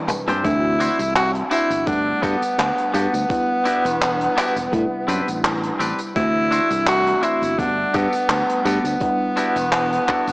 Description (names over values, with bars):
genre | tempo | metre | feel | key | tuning
vaporwave | 84 BPM | 4/4 | swing 54% on 16ths | G major | A4 = 442 Hz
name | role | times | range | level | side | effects
FM electric piano with soft pad layer | accompaniment | 0.0-10.3 s | C3 to F#5 | -26 LUFS | equal | wide subtle chorus, cassette tape
clean electric guitar | riff | 0.1-10.3 s | B3 to C5 | -26 LUFS | left 1 dB | wide subtle chorus, vintage 12-bit sampler grit, tape echo
natural country drum kit | drums | 0.1-10.3 s | handclaps, hi-hat, tambourine, toms | -24 LUFS | equal | gated reverb
warm tenor saxophone | melody | 0.4-10.3 s | B3 to F#4 | -20 LUFS | equal | tape echo
modern bright fingered electric bass | bass | 0.4-10.3 s | E1 to A2 | -24 LUFS | equal | none
electronic kick drum | drums | 0.4-10.2 s | none | -28 LUFS | equal | overdrive
room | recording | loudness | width
moderate plate reverb, RT60 2.3 s | cassette tape, small speaker sound | -17 LUFS | side -24 dB against mid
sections
0.4-10.3 A section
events
break 0.0-0.4; drum fill 0.0-0.4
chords
0.4 D9; 1.9 Gmaj9; 3.3 Em9; 4.7 Am11; 6.2 D9; 7.6 Gmaj9; 9.0 Em9